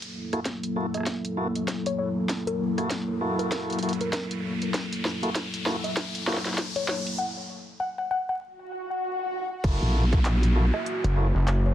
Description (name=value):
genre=glitch hop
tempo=98 BPM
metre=4/4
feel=swing 59% on 16ths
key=unclear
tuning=A4 = 440 Hz
part: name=dark analog pad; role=sustained chords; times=0.0-11.7 s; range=F#3 to A4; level=-31 LUFS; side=left 1 dB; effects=chorus, sidechain pumping
part: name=drum and bass drum kit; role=drums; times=0.0-11.6 s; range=crash cymbal, handclaps, hi-hat, rim click, snare drum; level=-31 LUFS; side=equal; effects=high-pass filter on hats, small room ambience, soft clipping on snare, high-pass filter on snare, high-pass filter on cymbals
part: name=riser, swell and downlifter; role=sound effects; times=0.0-11.7 s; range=none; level=-35 LUFS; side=left 1 dB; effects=none
part: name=tonewheel organ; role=stabs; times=0.3-11.3 s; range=A#3 to A4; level=-31 LUFS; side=equal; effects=overdrive, stopped rotary speaker, sidechain pumping, digital delay
part: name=electronic kick drum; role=drums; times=0.5-10.2 s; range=none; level=-27 LUFS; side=equal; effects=high-pass filter on kick, small room ambience
part: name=woody wave-folded pluck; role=melody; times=0.9-11.7 s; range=A#4 to F#5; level=-31 LUFS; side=left 2 dB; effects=chorus, digital delay
part: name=gritty driven synth bass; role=bass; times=9.6-11.7 s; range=F#1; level=-22 LUFS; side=equal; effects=tube saturation
part: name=vowel-sweep wobble bass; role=bass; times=9.8-10.7 s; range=A#1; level=-21 LUFS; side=equal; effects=chorus
room=light reverb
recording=dense, heavily limited modern master, vinyl crackle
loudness=-25 LUFS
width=side -12 dB against mid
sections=0.0-9.6 A section; 9.6-11.7 B section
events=build-up 0.0-9.6; drum fill 0.0-7.2; riser 0.0-7.2; break 7.2-9.6; swell 8.6-9.6; drop 9.6-11.7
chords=0.0 F#7#9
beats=0.46 1.07 1.68 | 2.29 2.91 3.52 4.13 | 4.74 5.36 5.97 6.58 | 7.19 7.80 8.42 9.03 | 9.64 10.25 10.87 11.48